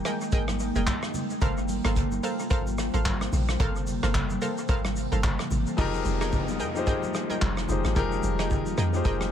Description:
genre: amapiano.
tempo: 110 BPM.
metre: 4/4.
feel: swing 58% on 16ths.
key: F minor.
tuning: A4 = 440 Hz.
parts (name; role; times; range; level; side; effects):
glassy FM pad; sustained chords; 0.0-9.3 s; C3 to G5; -32 LUFS; equal; ensemble chorus, built-in reverb.
analog pluck; stabs; 0.0-9.2 s; Ab4 to G5; -34 LUFS; right 2 dB; chorus, dub echo.
soft brush drum kit; drums; 0.1-9.3 s; handclaps, hi-hat, kick drum, rim click, shaker; -30 LUFS; equal; vintage 12-bit sampler grit, dub echo.
deep log drum bass; bass; 0.3-9.3 s; F1 to F2; -28 LUFS; equal; none.
congas; percussion; 0.5-9.3 s; none; -37 LUFS; right 3 dB; dub echo.
warm baby grand piano; accompaniment; 5.8-9.3 s; F3 to C5; -30 LUFS; left 6 dB; dub echo.
downlifter; sound effects; 5.8-9.3 s; none; -38 LUFS; left 2 dB; none.
room: light reverb, studio reverb.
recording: echo-heavy mix.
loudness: -24 LUFS.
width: side -9 dB against mid.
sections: 0.0-5.8 A section; 5.8-9.3 B section.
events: drop 0.0-5.8.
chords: 0.0 Fm11 (rootless); 1.4 Gm11; 5.8 Fm11.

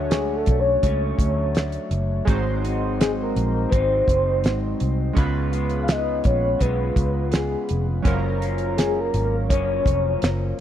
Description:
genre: indie pop, bedroom pop.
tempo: 83 BPM.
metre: 4/4.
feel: straight.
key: F# major.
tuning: A4 = 439 Hz.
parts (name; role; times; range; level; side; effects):
chorused retro synth keys; accompaniment; 0.0-10.6 s; F#3 to C#5; -29 LUFS; right 5 dB; none.
electric guitar through a small old amp; accompaniment; 0.0-10.6 s; F#2 to E#4; -29 LUFS; left 6 dB; lush chorus, warbly pitch drift.
vintage muted fingered electric bass; bass; 0.0-10.5 s; E#1 to D2; -24 LUFS; equal; none.
soft octave-layered synth lead; melody; 0.1-10.5 s; G#4 to E#5; -24 LUFS; left 2 dB; tremolo, lush chorus, slapback echo.
damped 70s drum kit; drums; 0.1-10.4 s; hi-hat, kick drum, snare drum; -22 LUFS; equal; none.
room: small room ambience.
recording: dry, close 1970s-style studio recording.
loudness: -19 LUFS.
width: side -10 dB against mid.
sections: 0.0-10.6 A section.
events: none.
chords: 0.0 Dmaj7; 2.3 G#7; 5.2 C#7; 8.1 F#maj7.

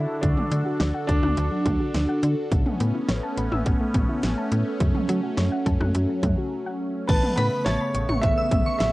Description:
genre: synth-pop.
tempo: 105 BPM.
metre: 4/4.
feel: straight.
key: A major.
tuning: A4 = 440 Hz.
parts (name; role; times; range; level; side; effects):
warm concert grand piano; melody; 0.0-2.2, 7.1-8.9 s; D4 to E5; -27 LUFS; right 1 dB; cassette tape, analog delay.
phased analog pad; sustained chords; 0.0-8.9 s; C#3 to A4; -27 LUFS; equal; phaser, chorus.
slap-like FM bass; bass; 0.0-8.9 s; A1 to F#3; -25 LUFS; equal; transformer saturation.
soft round pluck; arpeggios; 0.2-8.9 s; C#3 to F#6; -32 LUFS; left 2 dB; chorus, analog delay.
pop drum kit; drums; 0.2-8.9 s; crash cymbal, hi-hat, kick drum, snare drum, toms; -25 LUFS; equal; cassette tape.
shimmering bell with halo; second line; 7.1-8.8 s; A5 to E6; -31 LUFS; equal; ensemble chorus, tremolo.
room: moderate booth ambience, RT60 0.2 s.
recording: home recording on cassette.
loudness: -21 LUFS.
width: side -18 dB against mid.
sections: 0.0-7.1 A section; 7.1-8.9 B section.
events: break 6.5-7.1.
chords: 0.0 D; 2.5 Aadd9; 4.8 F#m; 7.1 Aadd9.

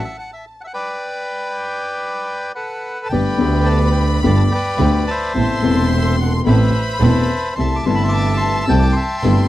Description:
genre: tango.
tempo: 108 BPM.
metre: 4/4.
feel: rubato.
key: G major.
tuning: A4 = 440 Hz.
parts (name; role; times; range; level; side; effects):
bandoneon; melody; 0.0-9.5 s; A4 to E6; -22 LUFS; equal; none.
warm chamber violin section; second line; 0.0-9.5 s; A5 to C6; -27 LUFS; left 2 dB; none.
warm grand piano; accompaniment; 3.1-9.5 s; E1 to G4; -19 LUFS; left 4 dB; none.
rich studio string section; stabs; 3.1-9.5 s; A3 to A4; -27 LUFS; right 5 dB; none.
clear double bass; bass; 3.1-9.5 s; E1 to D2; -17 LUFS; right 2 dB; none.
room: little or no reverb.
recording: dry, close 1970s-style studio recording.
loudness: -15 LUFS.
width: side -14 dB against mid.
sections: 0.0-3.1 A section; 3.1-9.5 B section.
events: none.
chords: 0.0 Dadd9; 0.9 Gadd9; 5.4 Amadd9; 7.6 C6.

